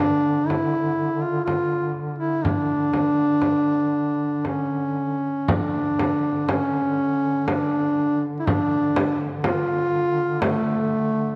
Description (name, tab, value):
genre	caucasian folk, Caucasian lament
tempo	61 BPM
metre	3/4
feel	rubato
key	D harmonic minor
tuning	A4 = 440 Hz
part	mellow duduk	melody	0.0-11.4 s	A3 to F4	-24 LUFS	equal	none
part	mellow duduk	drone	0.0-11.4 s	D3	-32 LUFS	equal	none
part	frame drum	percussion	0.0-10.6 s	none	-29 LUFS	equal	none
room	wet church reverb, RT60 2.5 s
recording	none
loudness	-23 LUFS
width	mono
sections	0.0-5.5 A section; 5.5-11.4 B section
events	none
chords	none